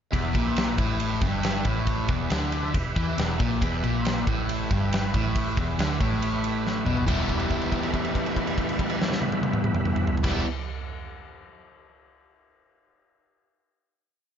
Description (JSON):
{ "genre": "blues rock power trio and southern rock", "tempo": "139 BPM", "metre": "4/4", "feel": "straight", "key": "E minor", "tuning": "A4 = 440 Hz", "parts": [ { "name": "overdriven tonewheel organ", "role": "sustained chords", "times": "0.1-10.4 s", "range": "E4 to E5", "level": "-34 LUFS", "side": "right 3 dB", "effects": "slow rotary speaker, chorus vibrato" }, { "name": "crunchy overdriven guitar", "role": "riff", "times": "0.1-10.4 s", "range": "E2 to E4", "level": "-27 LUFS", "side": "left 1 dB", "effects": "none" }, { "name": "vintage muted fingered electric bass", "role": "bass", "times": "0.1-10.4 s", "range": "E1 to E2", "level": "-30 LUFS", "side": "equal", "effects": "none" }, { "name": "big rock drum kit", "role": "drums", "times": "0.1-10.3 s", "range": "crash cymbal, kick drum, ride cymbal, snare drum, toms", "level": "-28 LUFS", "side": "equal", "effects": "none" } ], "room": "light reverb", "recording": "nothing above 7.5 kHz", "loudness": "-23 LUFS", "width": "side -8 dB against mid", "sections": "0.1-7.1 riff; 7.1-10.5 final chord", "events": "drum fill 6.6-7.1; held note 7.1-10.2", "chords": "0.1 Em" }